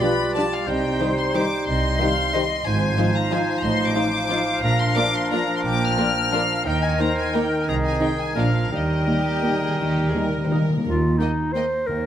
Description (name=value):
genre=classical, orchestral ballroom waltz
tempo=158-198 BPM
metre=3/4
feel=rubato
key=Eb major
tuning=A4 = 441 Hz
part: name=warm chamber violin section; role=melody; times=0.0-11.6 s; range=Eb5 to F6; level=-27 LUFS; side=left 5 dB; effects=none
part: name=clear oboe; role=second line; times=0.0-10.7 s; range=Ab4 to D5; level=-30 LUFS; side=right 1 dB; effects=none
part: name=concert flute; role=second line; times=0.0-10.7 s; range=Bb4 to G5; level=-29 LUFS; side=left 1 dB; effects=none
part: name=warm clarinet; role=second line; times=0.0-12.1 s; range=D4 to C5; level=-29 LUFS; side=left 1 dB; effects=none
part: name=warm studio violin section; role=second line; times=0.0-11.6 s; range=Eb4 to Eb5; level=-33 LUFS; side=left 3 dB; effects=none
part: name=dark studio viola section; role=accompaniment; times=0.0-11.6 s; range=Eb3 to Eb4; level=-29 LUFS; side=right 1 dB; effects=none
part: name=mellow bassoon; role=accompaniment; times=0.0-10.7 s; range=Eb3 to G3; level=-28 LUFS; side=right 2 dB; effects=none
part: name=warm French horn section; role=sustained chords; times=0.0-10.6 s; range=Eb3 to F4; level=-31 LUFS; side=left 3 dB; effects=none
part: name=warm chamber cello section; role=bass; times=0.7-12.1 s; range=Eb2 to Eb3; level=-29 LUFS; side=right 2 dB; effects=none
part: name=warm chamber double bass section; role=bass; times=0.7-12.1 s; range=Ab1 to Eb2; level=-27 LUFS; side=right 2 dB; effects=none
part: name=timpani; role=percussion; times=8.7-11.3 s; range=Eb3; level=-26 LUFS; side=left 1 dB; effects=none
room=moderate scoring stage reverb, RT60 1.7 s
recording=none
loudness=-19 LUFS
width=side -10 dB against mid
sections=0.0-10.9 A section; 10.9-12.1 B section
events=timpani fill 8.7-10.9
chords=0.0 G7; 0.7 Cm; 2.7 Fm7/Ab; 3.6 F7/A; 4.6 Bb; 6.7 Eb5; 7.7 Ab/C; 8.4 Bb; 8.7 Eb; 10.9 Eb5